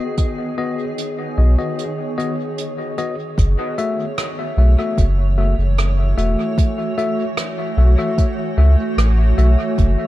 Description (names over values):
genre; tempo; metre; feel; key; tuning
ambient dub; 75 BPM; 4/4; straight; F# dorian; A4 = 440 Hz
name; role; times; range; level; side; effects
granular cloud pad; sustained chords; 0.0-10.1 s; D#3 to C#5; -25 LUFS; right 2 dB; built-in reverb
tine electric piano; stabs; 0.0-10.1 s; A3 to E5; -23 LUFS; left 3 dB; overdrive, dub echo
wind-like tuned noise texture; texture; 0.0-3.4 s; D#5; -38 LUFS; right 3 dB; built-in reverb
electronic kick drum; drums; 0.2-9.9 s; none; -17 LUFS; equal; none
soft brush drum kit; drums; 0.2-9.9 s; hi-hat, rim click; -28 LUFS; right 3 dB; dub echo
warm sub bass; bass; 1.4-10.0 s; E1 to C#2; -13 LUFS; equal; none
room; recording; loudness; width
small room reverb; dark, warm production; -16 LUFS; side -15 dB against mid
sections
0.0-3.4 A section; 3.4-10.1 B section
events
break 1.8-3.4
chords
0.0 B; 3.4 F#m7